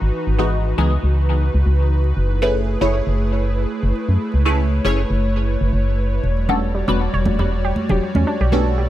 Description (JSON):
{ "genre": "deep house", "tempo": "118 BPM", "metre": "4/4", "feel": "swing 54% on 16ths", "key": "unclear", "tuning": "A4 = 440 Hz", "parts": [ { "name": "airy breathy pad", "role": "sustained chords", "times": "0.0-8.9 s", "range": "E3 to D5", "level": "-24 LUFS", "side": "equal", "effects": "chorus" }, { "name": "organ-like FM bass", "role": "bass", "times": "0.0-8.9 s", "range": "E1 to F#2", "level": "-18 LUFS", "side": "equal", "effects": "none" }, { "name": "filtered dub chord stab", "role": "stabs", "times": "0.4-8.9 s", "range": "E3 to C#5", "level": "-23 LUFS", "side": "equal", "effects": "phaser, analog chorus, vintage 12-bit sampler grit, analog delay" }, { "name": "warbly dusty pluck", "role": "arpeggios", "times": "6.5-8.9 s", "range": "G3 to C#5", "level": "-26 LUFS", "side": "right 3 dB", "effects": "chorus, analog delay" }, { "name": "congas", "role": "percussion", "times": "6.5-8.6 s", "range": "none", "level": "-23 LUFS", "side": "right 2 dB", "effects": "none" } ], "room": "little or no reverb", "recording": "vinyl crackle", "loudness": "-16 LUFS", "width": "side -13 dB against mid", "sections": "0.0-8.9 A section", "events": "none", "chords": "0.0 C#m11; 2.2 F#m11; 6.2 Em11" }